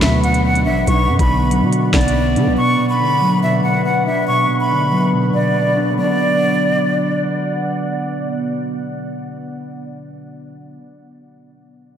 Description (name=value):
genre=hip hop, drill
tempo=141 BPM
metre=4/4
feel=half-time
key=B minor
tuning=A4 = 438 Hz
part: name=breathy concert flute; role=melody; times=0.0-7.2 s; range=D5 to C#6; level=-19 LUFS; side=equal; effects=diffuse ambient delay
part: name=mellow electric guitar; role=accompaniment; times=0.0-10.9 s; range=B2 to D4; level=-19 LUFS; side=equal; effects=spring reverb
part: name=deep dark ambient pad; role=sustained chords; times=0.0-10.1 s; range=B2 to F#5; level=-23 LUFS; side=right 2 dB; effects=chorus, built-in reverb
part: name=growling 808-style bass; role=bass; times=0.0-2.6 s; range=A1 to D3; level=-18 LUFS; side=equal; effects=none
part: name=drill drum kit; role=drums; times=0.0-2.5 s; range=hi-hat, kick drum, snare drum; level=-22 LUFS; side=equal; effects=vintage 12-bit sampler grit
room=wet cathedral reverb, RT60 6.0 s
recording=dreamy mix soaked in reverb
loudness=-14 LUFS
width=side -9 dB against mid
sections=0.0-6.0 A section; 6.0-9.4 B section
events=none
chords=0.0 Bm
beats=0.02 0.45 | 0.87 1.30 1.73 2.15 | 2.58 3.00 3.43 3.85 | 4.28 4.70 5.13 5.55 | 5.98 6.41 6.83 7.26 | 7.68 8.11 8.53 8.96